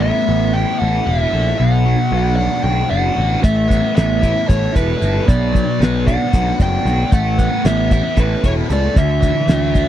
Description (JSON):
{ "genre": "psychedelic rock", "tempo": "228 BPM (eighths)", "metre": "7/8", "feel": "straight", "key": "unclear", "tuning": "A4 = 435 Hz", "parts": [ { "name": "fuzz lead guitar", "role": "melody", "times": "0.0-9.9 s", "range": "B4 to G5", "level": "-20 LUFS", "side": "equal", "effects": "distortion, tape echo" }, { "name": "overdriven electric guitar", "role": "riff", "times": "0.0-9.9 s", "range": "B2 to A4", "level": "-19 LUFS", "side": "equal", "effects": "phaser" }, { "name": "fuzz picked electric bass", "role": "bass", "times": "0.0-9.8 s", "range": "E1 to D2", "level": "-18 LUFS", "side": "equal", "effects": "overdrive" }, { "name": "cloth-damped thuddy drum kit", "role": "drums", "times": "3.4-9.9 s", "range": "hi-hat, kick drum, snare drum", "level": "-15 LUFS", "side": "equal", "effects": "none" } ], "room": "little or no reverb", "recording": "dry, close 1970s-style studio recording", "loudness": "-13 LUFS", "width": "side -11 dB against mid", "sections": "0.0-9.9 A section", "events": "none", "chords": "0.0 Asus2; 1.6 Bm; 3.4 Asus2; 5.3 Bm; 7.1 Asus2; 9.0 Dsus2" }